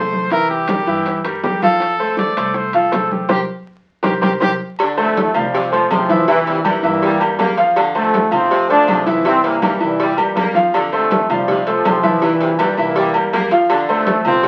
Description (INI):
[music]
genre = latin, salsa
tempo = 162 BPM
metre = 4/4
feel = straight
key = F major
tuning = A4 = 440 Hz
[part]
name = clear trumpet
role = melody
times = 0.0-4.5 s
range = G4 to D5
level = -22 LUFS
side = equal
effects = none
[part]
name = bright upright piano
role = accompaniment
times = 0.0-14.5 s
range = E3 to F5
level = -20 LUFS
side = equal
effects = none
[part]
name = upright bass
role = bass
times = 0.0-14.5 s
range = C2 to G2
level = -35 LUFS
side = equal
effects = none
[part]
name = bongos and cowbell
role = percussion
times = 0.1-14.5 s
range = none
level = -27 LUFS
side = equal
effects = none
[part]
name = congas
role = percussion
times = 0.1-14.5 s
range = none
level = -26 LUFS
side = equal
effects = none
[part]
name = timbales and agogo bells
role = percussion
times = 0.3-14.4 s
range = none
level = -24 LUFS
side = equal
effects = none
[part]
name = bright saxophone section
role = second line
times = 4.8-14.5 s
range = C3 to Bb3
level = -25 LUFS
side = equal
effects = none
[part]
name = bright trombone section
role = melody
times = 5.0-14.5 s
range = G2 to D4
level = -20 LUFS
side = equal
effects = none
[sound]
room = wet studio ambience, RT60 0.5 s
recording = very old 78 rpm record, vinyl crackle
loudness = -16 LUFS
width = mono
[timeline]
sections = 0.0-4.8 A section; 4.8-14.5 B section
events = band accent 3.3-4.8; drum fill 3.9-4.8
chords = 0.3 C7; 1.8 F; 3.3 C5; 4.8 F; 6.3 C7; 7.8 F; 9.3 C7; 10.7 F; 12.2 C7; 13.7 F